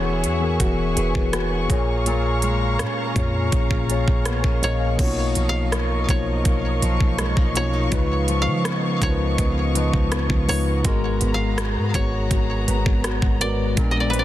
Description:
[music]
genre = contemporary R&B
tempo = 82 BPM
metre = 4/4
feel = straight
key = unclear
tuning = A4 = 440 Hz
[part]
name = mellow tine electric piano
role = accompaniment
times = 0.0-14.2 s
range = Ab2 to F5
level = -24 LUFS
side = left 2 dB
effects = slow stereo tremolo
[part]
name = warm studio string section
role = sustained chords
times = 0.0-14.2 s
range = Cb4 to C#6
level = -29 LUFS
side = left 1 dB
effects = sidechain pumping
[part]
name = nylon-string guitar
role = arpeggios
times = 0.0-14.2 s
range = Bb2 to Bb4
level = -29 LUFS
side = right 2 dB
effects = digital delay
[part]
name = warm 808-style bass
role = bass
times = 0.0-14.2 s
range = E1 to F3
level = -24 LUFS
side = equal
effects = none
[part]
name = trap drum kit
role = drums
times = 0.2-14.2 s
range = crash cymbal, hi-hat, kick drum, rim click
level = -24 LUFS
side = equal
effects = soft clipping on snare
[part]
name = koto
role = melody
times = 4.6-14.2 s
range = Cb5 to E#5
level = -29 LUFS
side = equal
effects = digital delay
[part]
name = swell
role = sound effects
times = 14.1-14.2 s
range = none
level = -31 LUFS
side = right 6 dB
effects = none
[sound]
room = light reverb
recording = dense, heavily limited modern master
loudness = -19 LUFS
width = side -13 dB against mid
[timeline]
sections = 0.0-5.0 A section; 5.0-14.2 B section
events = swell 14.1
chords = 0.0 E69; 1.7 Bbm7; 5.0 Bmaj9#11; 7.9 Db9; 10.8 Abm9

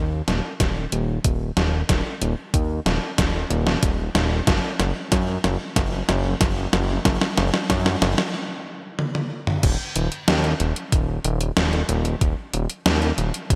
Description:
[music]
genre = synthwave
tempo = 93 BPM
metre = 4/4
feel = straight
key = Eb minor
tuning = A4 = 440 Hz
[part]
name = fat analog bass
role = bass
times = 0.0-13.6 s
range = Eb1 to Gb2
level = -25 LUFS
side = equal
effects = sidechain pumping
[part]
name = gated 80s digital drum machine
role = drums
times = 0.3-13.6 s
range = crash cymbal, hi-hat, snare drum, toms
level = -25 LUFS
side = equal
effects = gated reverb, gated reverb snare, overdrive
[part]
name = electronic kick drum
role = drums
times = 0.6-13.6 s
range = none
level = -25 LUFS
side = equal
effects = overdrive
[sound]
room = moderate lush hall reverb, RT60 2.7 s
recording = bright 1980s-style digital production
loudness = -22 LUFS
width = mono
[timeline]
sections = 0.0-9.6 A section; 9.6-13.6 B section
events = drum fill 0.0-8.3, 9.0-9.6; stop 8.3-9.6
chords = none

